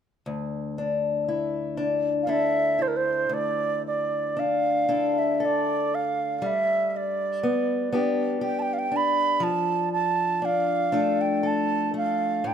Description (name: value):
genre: celtic folk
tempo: 59 BPM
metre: 3/4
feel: rubato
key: D minor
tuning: A4 = 440 Hz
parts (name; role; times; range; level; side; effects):
- fingerpicked acoustic archtop guitar; accompaniment; 0.3-12.5 s; D2 to A4; -26 LUFS; left 3 dB; none
- bright baroque flute; melody; 2.2-12.5 s; Bb4 to B5; -24 LUFS; right 4 dB; none
room: moderate recital hall reverb, RT60 1.6 s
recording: close, detailed microphones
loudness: -22 LUFS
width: side -8 dB against mid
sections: 0.3-3.3 A section; 3.3-12.5 B section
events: none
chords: 0.3 Dsus2; 6.4 G; 9.4 Dm/F